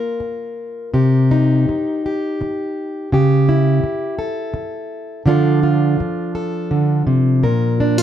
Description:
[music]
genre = folk, solo fingerstyle acoustic guitar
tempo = 83 BPM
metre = 3/4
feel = rubato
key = C dorian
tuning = A4 = 440 Hz
[part]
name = fingerpicked plugged-in steel-string acoustic guitar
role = solo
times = 0.0-8.0 s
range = Bb2 to Bb4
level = -15 LUFS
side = equal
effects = none
[sound]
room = light reverb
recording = dark, warm production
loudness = -15 LUFS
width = side -10 dB against mid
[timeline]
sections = 0.0-8.0 A section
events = none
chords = 0.0 Bb5; 0.9 Cm; 3.1 A7/C#; 5.3 Dm; 7.4 Bb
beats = 0.20 | 0.94 1.68 2.41 | 3.12 3.83 4.54 | 5.26 5.98 6.69 | 7.42

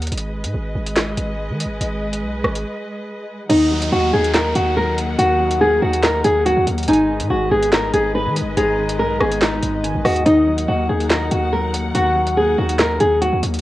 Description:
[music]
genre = hip hop, drill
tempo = 142 BPM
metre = 4/4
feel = half-time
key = Eb minor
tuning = A4 = 441 Hz
[part]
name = warm studio string section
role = sustained chords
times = 0.0-13.6 s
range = Eb3 to Gb5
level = -29 LUFS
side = equal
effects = cassette tape
[part]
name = hard-hitting 808-style bass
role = bass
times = 0.0-13.6 s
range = Ab1 to Eb3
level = -23 LUFS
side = right 1 dB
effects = none
[part]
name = drill drum kit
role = drums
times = 0.0-13.6 s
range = crash cymbal, handclaps, hi-hat, rim click, snare drum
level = -22 LUFS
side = equal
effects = cassette tape
[part]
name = flamenco guitar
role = melody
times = 3.5-13.4 s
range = Eb4 to Cb5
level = -17 LUFS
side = equal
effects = low-pass filter, cassette tape
[part]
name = glassy wavetable pluck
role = second line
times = 3.5-13.6 s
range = Eb5 to Bb5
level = -26 LUFS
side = left 1 dB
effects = chorus, cassette tape, tape echo
[part]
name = dark concert grand piano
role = accompaniment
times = 3.5-13.6 s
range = Ab2 to Eb5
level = -26 LUFS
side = left 5 dB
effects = low-pass filter, cassette tape
[part]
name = downlifter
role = sound effects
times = 3.5-6.9 s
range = none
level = -32 LUFS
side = right 2 dB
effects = none
[sound]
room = moderate spring reverb, RT60 1.3 s, studio ambience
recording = home recording on cassette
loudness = -16 LUFS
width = side -15 dB against mid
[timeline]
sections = 0.0-3.5 A section; 3.5-13.6 B section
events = break 2.7-3.5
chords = 0.1 Abm; 3.5 Ebm; 6.9 Abm; 10.3 Ebm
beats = | 0.12 0.54 0.96 1.39 | 1.81 2.23 2.65 3.08 | 3.50 3.92 4.34 4.77 | 5.19 5.61 6.03 6.46 | 6.88 7.30 7.72 8.15 | 8.57 8.99 9.41 9.84 | 10.26 10.68 11.10 11.53 | 11.95 12.37 12.79 13.22

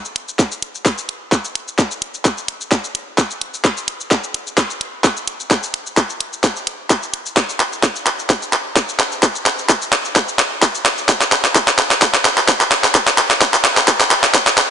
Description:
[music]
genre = minimal techno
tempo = 129 BPM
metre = 4/4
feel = swing 54% on 16ths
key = none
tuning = none
[part]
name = garage drum kit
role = drums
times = 0.1-14.7 s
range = handclaps, hi-hat, shaker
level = -15 LUFS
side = equal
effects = overdrive, high-pass filter on snare, high-pass filter on perc, high-pass filter on hats
[part]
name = electronic kick drum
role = drums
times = 0.4-14.4 s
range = none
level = -15 LUFS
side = equal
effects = overdrive, high-pass filter on kick
[sound]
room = moderate lush hall reverb, RT60 2.0 s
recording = nothing above 11.0 kHz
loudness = -14 LUFS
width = side -8 dB against mid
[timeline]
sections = 0.0-14.7 A section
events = build-up 0.0-14.7; drum fill 0.0-14.7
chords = none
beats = 0.39 0.86 1.32 | 1.79 2.25 2.72 3.18 | 3.65 4.11 4.58 5.04 | 5.51 5.97 6.44 6.90 | 7.37 7.83 8.30 8.76 | 9.23 9.69 10.16 10.62 | 11.09 11.55 12.02 12.48 | 12.95 13.41 13.88 14.35

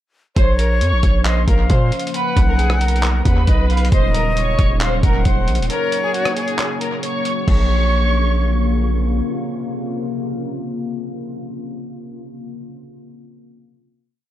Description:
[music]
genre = hip hop, trap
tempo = 135 BPM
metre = 4/4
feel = half-time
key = Bb minor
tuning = A4 = 443 Hz
[part]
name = warm studio violin section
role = melody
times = 0.4-8.8 s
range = Gb4 to Db6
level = -23 LUFS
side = right 1 dB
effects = low-pass filter, analog delay
[part]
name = bright concert flute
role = second line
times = 0.4-8.8 s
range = Db5 to Gb5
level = -24 LUFS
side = left 3 dB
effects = analog delay
[part]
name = deep dark ambient pad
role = sustained chords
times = 1.1-11.8 s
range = C3 to Gb4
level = -26 LUFS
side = left 1 dB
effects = chorus, built-in reverb
[part]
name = distorted 808-style bass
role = bass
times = 0.4-9.2 s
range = Eb1 to Bb2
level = -17 LUFS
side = equal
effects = distortion
[part]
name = lo-fi sampler-style drum kit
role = drums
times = 0.4-7.6 s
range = crash cymbal, handclaps, hi-hat, kick drum, rim click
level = -18 LUFS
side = equal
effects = none
[sound]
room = little or no reverb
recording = echo-heavy mix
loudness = -15 LUFS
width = side -13 dB against mid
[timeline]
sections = 0.4-7.5 hook; 7.5-11.0 final chord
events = break 5.7-7.5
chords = 0.4 Bbmadd9; 2.1 Badd9; 3.9 Ebm7; 5.7 Gb; 7.5 Bbmadd9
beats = | 0.36 0.81 1.25 1.70 | 2.14 2.59 3.03 3.48 | 3.92 4.37 4.81 5.25 | 5.70 6.14 6.59 7.03 | 7.48 7.92 8.37 8.81 | 9.25 9.70 10.14 10.59

